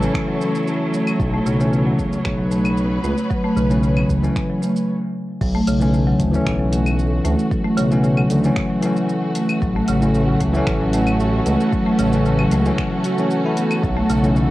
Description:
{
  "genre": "organic downtempo",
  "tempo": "114 BPM",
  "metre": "4/4",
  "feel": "straight",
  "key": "unclear",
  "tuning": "A4 = 439 Hz",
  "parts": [
    { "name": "bell-like tine electric piano", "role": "accompaniment", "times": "0.0-14.5 s", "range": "E3 to E4", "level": "-23 LUFS", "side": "left 1 dB", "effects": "sidechain pumping, cassette tape, tape echo" },
    { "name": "warm studio string section", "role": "sustained chords", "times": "0.0-14.5 s", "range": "E3 to C#5", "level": "-26 LUFS", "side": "right 1 dB", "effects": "sidechain pumping, cassette tape" },
    { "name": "marimba with soft mallets", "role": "arpeggios", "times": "0.0-14.5 s", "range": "C#3 to F#4", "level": "-20 LUFS", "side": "equal", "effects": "cassette tape, tape echo" },
    { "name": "smooth synth bass", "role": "bass", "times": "0.0-14.5 s", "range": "A1 to D2", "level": "-21 LUFS", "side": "equal", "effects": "sidechain pumping" },
    { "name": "deep house drum kit", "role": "drums", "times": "0.0-14.5 s", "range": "claves, crash cymbal, finger snaps, hi-hat, shaker", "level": "-31 LUFS", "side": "left 1 dB", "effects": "overdrive" },
    { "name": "electronic kick drum", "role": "drums", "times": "0.1-13.9 s", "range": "none", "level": "-25 LUFS", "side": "equal", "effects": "overdrive" }
  ],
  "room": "moderate small room reverb, RT60 0.6 s",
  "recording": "home recording on cassette",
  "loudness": "-16 LUFS",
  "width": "side -16 dB against mid",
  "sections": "0.0-5.4 A section; 5.4-14.5 B section",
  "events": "stop 4.9-5.4",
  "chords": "0.0 F#m7; 1.2 Bsus2; 5.4 Bm7; 9.6 A6; 13.8 B7(no3)",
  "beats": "0.15 0.68 | 1.20 1.73 2.25 2.78 | 3.31 3.83 4.36 4.89 | 5.41 5.94 6.46 6.99 | 7.52 8.04 8.57 9.10 | 9.62 10.15 10.68 11.20 | 11.73 12.26 12.78 13.31 | 13.83 14.36"
}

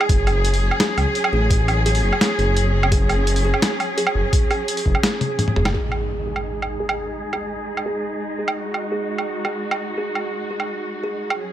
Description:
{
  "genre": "half-time drum and bass",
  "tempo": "170 BPM",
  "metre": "4/4",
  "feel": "half-time",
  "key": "unclear",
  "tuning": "A4 = 439 Hz",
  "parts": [
    { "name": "rich studio cello section", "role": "sustained chords", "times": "0.0-11.5 s", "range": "F#3 to G#4", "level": "-25 LUFS", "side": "left 1 dB", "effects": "vintage 12-bit sampler grit, sidechain pumping, low-pass filter" },
    { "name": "boom bap sampler-style drum kit", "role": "drums", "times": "0.0-11.4 s", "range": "hi-hat, snare drum, toms, woodblock", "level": "-22 LUFS", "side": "right 1 dB", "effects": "none" },
    { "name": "dark detuned saw bass", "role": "bass", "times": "0.1-5.7 s", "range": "F#1 to C#2", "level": "-20 LUFS", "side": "equal", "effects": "none" },
    { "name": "electronic kick drum", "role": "drums", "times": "0.1-4.9 s", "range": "none", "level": "-19 LUFS", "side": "equal", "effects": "none" },
    { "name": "kalimba", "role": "arpeggios", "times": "0.3-11.4 s", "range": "G#4", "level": "-27 LUFS", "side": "right 3 dB", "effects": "low-pass filter, dub echo" },
    { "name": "impact", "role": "sound effects", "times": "5.7-7.2 s", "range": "none", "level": "-29 LUFS", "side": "equal", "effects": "none" }
  ],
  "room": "light reverb",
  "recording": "none",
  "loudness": "-18 LUFS",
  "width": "side -12 dB against mid",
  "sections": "0.0-5.7 A section; 5.7-11.5 B section",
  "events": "drop 0.0-5.7; drum fill 5.2-5.7; impact 5.7-7.2; filter sweep on cello section 5.7-11.5; filter sweep on kalimba 5.7-11.5",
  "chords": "0.1 F#m; 5.7 G#5",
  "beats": "| 0.10 0.45 0.80 1.15 | 1.51 1.86 2.21 2.57 | 2.92 3.27 3.62 3.98 | 4.33 4.68 5.04 5.39 | 5.74 6.09 6.45 6.80 | 7.15 7.51 7.86 8.21 | 8.57 8.92 9.27 9.62 | 9.98 10.33 10.68 11.04 | 11.39"
}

